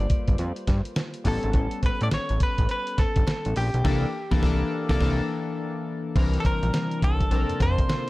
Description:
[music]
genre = R&B, new jack swing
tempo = 104 BPM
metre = 4/4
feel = swing 62% on 16ths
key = unclear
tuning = A4 = 440 Hz
[part]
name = direct-recorded clean electric guitar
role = melody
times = 0.0-8.1 s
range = G4 to D5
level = -31 LUFS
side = equal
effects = tube saturation
[part]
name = warm analog keys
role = accompaniment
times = 0.0-8.1 s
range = E3 to C5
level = -30 LUFS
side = left 3 dB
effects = chorus
[part]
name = fat analog bass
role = bass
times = 0.0-7.8 s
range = G1 to A2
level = -25 LUFS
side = equal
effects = none
[part]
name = dusty soul sampler-style drum kit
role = drums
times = 0.1-8.1 s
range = crash cymbal, hi-hat, kick drum, snare drum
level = -24 LUFS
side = equal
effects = none
[part]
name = cowbell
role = percussion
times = 0.4-8.1 s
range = none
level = -43 LUFS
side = right 4 dB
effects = none
[part]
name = warm analog pad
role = sustained chords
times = 6.1-8.1 s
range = C3 to D4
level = -32 LUFS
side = equal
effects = chorus
[sound]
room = little or no reverb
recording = none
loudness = -22 LUFS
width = side -19 dB against mid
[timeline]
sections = 0.0-6.2 A section; 6.2-8.1 B section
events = band accent 3.9-6.2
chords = 0.0 Gm9; 1.3 A9; 3.9 C13; 6.2 C9; 7.3 Bbmaj9

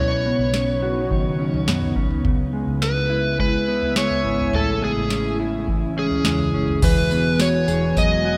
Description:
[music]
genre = dream pop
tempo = 105 BPM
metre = 4/4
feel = straight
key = E major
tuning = A4 = 442 Hz
[part]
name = overdriven slide guitar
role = melody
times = 0.0-8.4 s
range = G#4 to D#5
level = -26 LUFS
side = equal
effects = tape echo
[part]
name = ethereal airy pad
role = sustained chords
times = 0.0-8.4 s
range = C#3 to F#4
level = -29 LUFS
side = equal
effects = ensemble chorus, built-in reverb
[part]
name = mellow electric guitar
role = arpeggios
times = 0.0-8.4 s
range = A2 to B4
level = -25 LUFS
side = equal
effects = lush chorus, tape echo
[part]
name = vintage muted fingered electric bass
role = bass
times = 0.0-8.4 s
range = E1 to F#2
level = -31 LUFS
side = equal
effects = none
[part]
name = drifting glass-harmonics texture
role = texture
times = 0.0-8.4 s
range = B4 to G#5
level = -38 LUFS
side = equal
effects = chorus, built-in reverb, tape echo
[part]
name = booming analog drum machine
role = drums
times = 0.5-8.2 s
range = crash cymbal, kick drum, snare drum, tambourine, toms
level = -26 LUFS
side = equal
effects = none
[sound]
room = moderate lush hall reverb, RT60 1.8 s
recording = rough home demo mix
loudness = -21 LUFS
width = mono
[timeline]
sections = 0.0-6.8 A section; 6.8-8.4 B section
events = none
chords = 0.0 Badd9; 2.3 C#m7; 4.5 Amaj7; 6.8 Eadd9

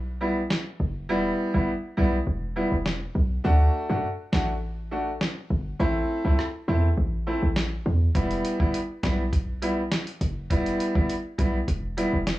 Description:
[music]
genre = dancehall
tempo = 102 BPM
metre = 4/4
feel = straight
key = E minor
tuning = A4 = 442 Hz
[part]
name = short 808-style bass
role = bass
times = 0.0-12.4 s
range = E1 to F#2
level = -25 LUFS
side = equal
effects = none
[part]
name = bright baby grand piano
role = accompaniment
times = 0.2-12.2 s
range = G3 to F#4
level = -26 LUFS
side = equal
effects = sidechain pumping
[part]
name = lo-fi sampler-style drum kit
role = drums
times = 0.5-12.4 s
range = hi-hat, kick drum, rim click, snare drum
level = -27 LUFS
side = equal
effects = none
[sound]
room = digital ambience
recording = dry, gritty hardware recording, cassette tape, small room ambience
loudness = -23 LUFS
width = side -16 dB against mid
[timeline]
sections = 0.0-12.4 A section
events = break 0.0-8.2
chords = 0.0 Em; 3.4 D; 5.8 Am; 8.2 Em

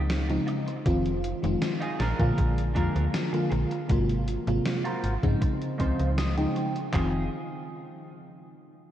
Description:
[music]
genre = vaporwave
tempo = 79 BPM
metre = 4/4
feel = straight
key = F minor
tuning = A4 = 440 Hz
[part]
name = FM electric piano with soft pad layer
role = accompaniment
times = 0.0-7.2 s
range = C3 to F4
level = -28 LUFS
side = equal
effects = wide subtle chorus, analog delay
[part]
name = slap-like FM bass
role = bass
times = 0.0-7.3 s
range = F1 to Bb2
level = -28 LUFS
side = equal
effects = none
[part]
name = gated 80s digital drum machine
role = drums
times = 0.1-6.9 s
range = hi-hat, snare drum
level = -35 LUFS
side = equal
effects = gated reverb, gated reverb snare, vintage 12-bit sampler grit
[part]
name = electric guitar at the edge of break-up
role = riff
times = 0.3-7.3 s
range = D4 to G5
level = -36 LUFS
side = right 2 dB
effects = analog chorus, low-pass filter, analog delay
[part]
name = gated 80s digital drum machine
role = drums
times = 0.9-7.1 s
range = handclaps, kick drum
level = -27 LUFS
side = equal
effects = gated reverb, vintage 12-bit sampler grit
[sound]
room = moderate huge ambient reverb, RT60 4.2 s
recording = dreamy mix soaked in reverb, cassette tape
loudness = -24 LUFS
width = side -11 dB against mid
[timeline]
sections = 0.0-6.9 A section; 6.9-8.9 B section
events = filter sweep on clean electric guitar 0.0-6.9; clean electric guitar fill 5.8-6.9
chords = 0.0 Dbmaj9; 0.9 Fm7; 2.0 Bb7; 3.9 Ab13; 5.4 Dbmaj9; 6.9 Fm7

